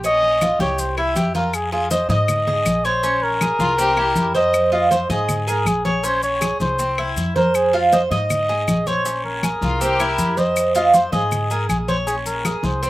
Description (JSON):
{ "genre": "latin, Cuban son and guajira", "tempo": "159 BPM", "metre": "4/4", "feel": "straight", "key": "F minor", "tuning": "A4 = 441 Hz", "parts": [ { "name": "Cuban tres", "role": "arpeggios", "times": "0.0-12.9 s", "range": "C4 to Eb5", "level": "-20 LUFS", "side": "right 2 dB", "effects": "slapback echo" }, { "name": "upright bass", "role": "bass", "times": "0.0-12.9 s", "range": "Bb1 to Ab2", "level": "-27 LUFS", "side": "equal", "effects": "none" }, { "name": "congas", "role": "percussion", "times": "0.0-12.9 s", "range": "none", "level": "-25 LUFS", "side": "left 1 dB", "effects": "none" }, { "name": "guiro", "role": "percussion", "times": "0.0-12.9 s", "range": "none", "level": "-36 LUFS", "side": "left 4 dB", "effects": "none" }, { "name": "maracas", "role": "percussion", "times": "0.0-12.9 s", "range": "none", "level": "-32 LUFS", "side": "left 4 dB", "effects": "none" }, { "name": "trumpet with cup mute", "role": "melody", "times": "0.1-12.9 s", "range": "Ab4 to E5", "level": "-21 LUFS", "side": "left 1 dB", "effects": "slapback echo" }, { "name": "claves", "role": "percussion", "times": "0.4-12.6 s", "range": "none", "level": "-28 LUFS", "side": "left 5 dB", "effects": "none" }, { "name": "rich chamber violin section", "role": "second line", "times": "3.6-4.2, 9.6-10.3 s", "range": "F4 to G4", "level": "-24 LUFS", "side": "left 3 dB", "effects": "slapback echo" } ], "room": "little or no reverb", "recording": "recorded outdoors, with no room sound", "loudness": "-16 LUFS", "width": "side -16 dB against mid", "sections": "0.0-1.5 A section; 1.5-12.9 B section", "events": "muted trumpet solo 0.0-1.5", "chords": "0.0 Bbm; 0.8 C; 1.5 Fm7; 2.3 Ab5; 3.0 Bbm7; 3.8 C7; 4.5 Fm7; 5.3 Ab5; 6.0 Bbm7; 6.8 C; 7.5 Fm7; 8.3 Ab5; 9.1 Bbm7; 9.8 C7; 10.6 Fm7; 11.3 Ab5; 12.1 Bbm7" }